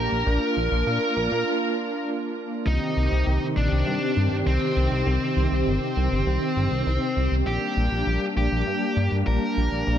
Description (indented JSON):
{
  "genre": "synthwave",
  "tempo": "100 BPM",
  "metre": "4/4",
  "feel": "straight",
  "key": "C minor",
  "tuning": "A4 = 438 Hz",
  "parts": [
    { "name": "high-gain lead guitar", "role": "melody", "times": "0.0-10.0 s", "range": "C4 to Bb4", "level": "-27 LUFS", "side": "equal", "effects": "distortion, ping-pong delay" },
    { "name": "brassy analog pad", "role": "sustained chords", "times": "0.0-10.0 s", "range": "C3 to G4", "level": "-26 LUFS", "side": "equal", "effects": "chorus, tremolo" },
    { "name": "chorused synth bass", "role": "bass", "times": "0.0-10.0 s", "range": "G1 to Bb2", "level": "-24 LUFS", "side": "equal", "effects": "none" }
  ],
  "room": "wet plate reverb, RT60 3.3 s",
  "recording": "dreamy mix soaked in reverb",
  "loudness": "-21 LUFS",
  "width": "side -10 dB against mid",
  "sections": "0.0-2.7 A section; 2.7-10.0 B section",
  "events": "break 1.5-2.7",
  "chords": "0.0 Gm/Bb (rootless); 2.7 Cm; 7.5 Gm/Bb"
}